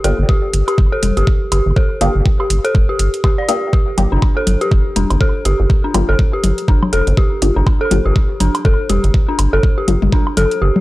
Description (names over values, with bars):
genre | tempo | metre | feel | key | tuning
minimal techno | 122 BPM | 4/4 | swing 58% on 16ths | G minor | A4 = 440 Hz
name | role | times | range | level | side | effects
dark detuned synth bell | riff | 0.0-10.7 s | D4 to D5 | -19 LUFS | equal | chorus, sidechain pumping, tape echo
filtered dub chord stab | stabs | 0.0-10.0 s | Bb3 to G4 | -22 LUFS | left 3 dB | phaser, wide subtle chorus, tape echo
rubbery square bass | bass | 0.0-10.7 s | F1 to G1 | -15 LUFS | equal | sidechain pumping
electronic hi-hat | drums | 0.0-10.6 s | none | -23 LUFS | right 2 dB | overdrive, studio reverb
electronic kick drum | drums | 0.3-10.2 s | none | -14 LUFS | equal | overdrive, studio reverb
electronic woodblock, toms and congas | percussion | 0.7-10.8 s | none | -20 LUFS | left 2 dB | studio reverb, tape echo
room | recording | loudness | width
little or no reverb | dry, gritty hardware recording, transformer saturation | -12 LUFS | side -18 dB against mid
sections
0.0-10.8 A section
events
kick drops out 10.6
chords
0.0 Gm7